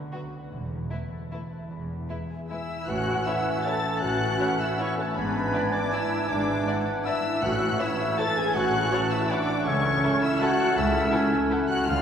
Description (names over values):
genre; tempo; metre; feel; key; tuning
classical; 142-174 BPM; 3/4; rubato; A major; A4 = 441 Hz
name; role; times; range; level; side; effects
concert harp; arpeggios; 0.0-12.0 s; G#2 to A5; -33 LUFS; left 2 dB; none
warm symphonic violin section; melody; 0.1-12.0 s; B4 to A6; -32 LUFS; left 3 dB; none
warm symphonic violin section; second line; 0.1-11.6 s; E4 to D5; -37 LUFS; left 2 dB; none
warm symphonic viola section; accompaniment; 0.1-12.0 s; F#3 to A4; -34 LUFS; right 2 dB; none
dark symphonic cello section; bass; 0.5-12.0 s; C#2 to A2; -35 LUFS; right 2 dB; none
warm symphonic double bass section; bass; 0.5-12.0 s; E1 to D2; -35 LUFS; right 1 dB; none
hollow concert flute; second line; 2.5-12.0 s; A4 to A5; -32 LUFS; equal; none
mellow French horn section; sustained chords; 2.5-12.0 s; A3 to A4; -31 LUFS; left 2 dB; none
clear clarinet; second line; 2.9-11.9 s; C#4 to D4; -33 LUFS; right 1 dB; none
mellow bassoon; accompaniment; 2.9-11.9 s; E3 to A3; -33 LUFS; right 1 dB; none
warm oboe; second line; 3.3-12.0 s; C#5 to A5; -32 LUFS; right 2 dB; none
timpani; percussion; 7.4-8.0 s; A2; -40 LUFS; left 1 dB; none
room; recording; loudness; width
wet cathedral reverb, RT60 4.3 s; recorded in a church or concert hall; -23 LUFS; side -8 dB against mid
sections
0.0-2.9 A section; 2.9-12.0 B section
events
none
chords
0.0 Bm/D; 0.5 Esus4; 1.7 E; 2.9 A; 5.2 E7/G#; 7.4 A; 9.7 A/C#